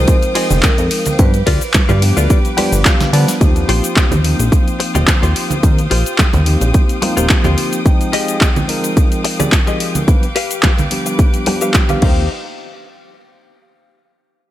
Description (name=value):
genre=nu-disco, nu disco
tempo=108 BPM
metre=4/4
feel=swing 53% on 16ths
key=Eb major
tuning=A4 = 436 Hz
part: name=vibraphone with hard mallets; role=melody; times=0.0-2.8 s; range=Bb4 to C5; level=-23 LUFS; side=right 1 dB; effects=digital delay
part: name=tine electric piano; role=accompaniment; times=0.0-12.2 s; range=F3 to G5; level=-21 LUFS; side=equal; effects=medium tremolo, sidechain pumping, low-pass filter, digital delay
part: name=clear studio string section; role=sustained chords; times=0.0-12.3 s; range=Ab3 to Eb6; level=-26 LUFS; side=left 1 dB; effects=sidechain pumping
part: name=direct-recorded clean electric guitar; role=riff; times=0.0-12.3 s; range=F3 to G5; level=-22 LUFS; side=left 3 dB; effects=wide subtle chorus, low-pass filter, digital delay
part: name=chorused synth bass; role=bass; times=0.0-7.6, 12.0-12.3 s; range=Eb1 to D3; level=-14 LUFS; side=equal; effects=sidechain pumping
part: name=electronic kick drum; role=drums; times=0.1-12.1 s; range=none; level=-13 LUFS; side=equal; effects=small room reverb
part: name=house drum kit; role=drums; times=0.1-12.1 s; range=crash cymbal, handclaps, hi-hat, ride cymbal, shaker, snare drum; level=-19 LUFS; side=left 1 dB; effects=small room reverb
part: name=congas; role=percussion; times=0.5-12.0 s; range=none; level=-22 LUFS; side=right 3 dB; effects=none
room=digital ambience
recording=none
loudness=-11 LUFS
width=side -14 dB against mid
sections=0.0-3.4 A section; 3.4-12.3 B section; 12.3-14.5 C section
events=drop 0.0-3.4; clean electric guitar fill 2.3-3.4; drum fill 2.9-3.4; filter sweep on clean electric guitar 3.4-12.3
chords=0.0 Fm9; 1.2 G7; 3.4 Eb69; 7.9 Fm9; 10.1 G7; 12.0 Eb69; 12.3 N.C.